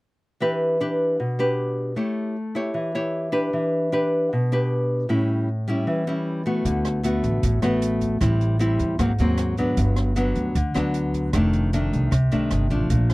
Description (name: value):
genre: bossa nova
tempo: 154 BPM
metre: 4/4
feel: straight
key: D major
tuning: A4 = 440 Hz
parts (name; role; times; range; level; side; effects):
- nylon-string guitar; accompaniment; 0.4-13.1 s; F2 to C#5; -22 LUFS; equal; none
- upright bass; bass; 6.7-13.1 s; F1 to E2; -23 LUFS; equal; none
- open jazz drum kit; drums; 6.7-13.1 s; hi-hat, kick drum, rim click; -29 LUFS; equal; none
room: light reverb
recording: dry, close 1970s-style studio recording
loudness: -20 LUFS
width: side -21 dB against mid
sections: 0.4-6.6 A section; 6.6-13.1 B section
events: none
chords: 0.4 Em7; 2.0 A7; 3.5 Em7; 5.1 A7; 6.6 D6; 8.2 Am7; 9.0 G#9; 9.8 Gmaj7; 11.3 F13